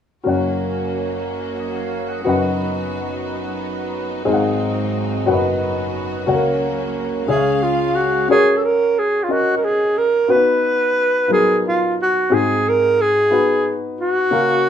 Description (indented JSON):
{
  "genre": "slow gospel",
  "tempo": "60 BPM (dotted quarters)",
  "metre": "6/8",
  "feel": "straight",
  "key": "F# major",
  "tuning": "A4 = 441 Hz",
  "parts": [
    { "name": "warm baby grand piano", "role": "accompaniment", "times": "0.2-14.7 s", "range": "F#1 to F#5", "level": "-20 LUFS", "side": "left 3 dB", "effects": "none" },
    { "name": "tonewheel organ", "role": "sustained chords", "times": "0.2-8.3 s", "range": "C#3 to F#5", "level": "-25 LUFS", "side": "right 4 dB", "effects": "fast rotary speaker, overdrive" },
    { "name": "bright studio string section", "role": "sustained chords", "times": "0.3-8.3 s", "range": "C#3 to E#5", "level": "-30 LUFS", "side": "right 1 dB", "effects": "none" },
    { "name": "breathy alto saxophone", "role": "melody", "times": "7.3-14.7 s", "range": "E#4 to B4", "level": "-16 LUFS", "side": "right 1 dB", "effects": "none" }
  ],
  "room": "wet small room reverb, RT60 0.5 s",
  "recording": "rough home demo mix",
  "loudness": "-16 LUFS",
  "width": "side -9 dB against mid",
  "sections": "0.2-8.3 A section; 8.3-14.7 B section",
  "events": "none",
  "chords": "0.2 F#; 2.3 B/F#; 4.3 G#7; 5.3 B/F#; 6.3 F#/C#; 7.3 C#; 8.3 F#; 10.3 B; 12.3 G#7; 13.3 B",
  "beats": "| 0.25 1.25 | 2.26 3.26 | 4.27 5.27 | 6.28 7.28 | 8.29 9.29 | 10.29 11.30 | 12.30 13.31 | 14.31"
}